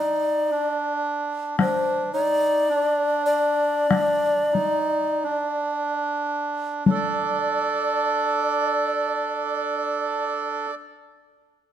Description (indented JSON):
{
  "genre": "japanese traditional, Japanese chamber music",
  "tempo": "33-56 BPM",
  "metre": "2/4",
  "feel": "rubato",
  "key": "unclear",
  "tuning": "A4 = 440 Hz",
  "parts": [
    { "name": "mellow long shakuhachi", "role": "melody", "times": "0.0-10.7 s", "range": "C5 to D5", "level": "-24 LUFS", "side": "left 2 dB", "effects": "none" },
    { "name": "melodica", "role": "second line", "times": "0.0-10.7 s", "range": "D4 to D5", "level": "-24 LUFS", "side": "right 4 dB", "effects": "none" },
    { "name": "solo taiko drums", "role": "percussion", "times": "1.6-7.7 s", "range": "none", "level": "-24 LUFS", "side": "left 4 dB", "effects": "none" }
  ],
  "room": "light reverb",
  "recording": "close, detailed microphones",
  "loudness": "-21 LUFS",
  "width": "side -10 dB against mid",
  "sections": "0.0-6.9 A section; 6.9-10.3 B section",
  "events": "slowing down 1.6-6.9",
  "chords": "none"
}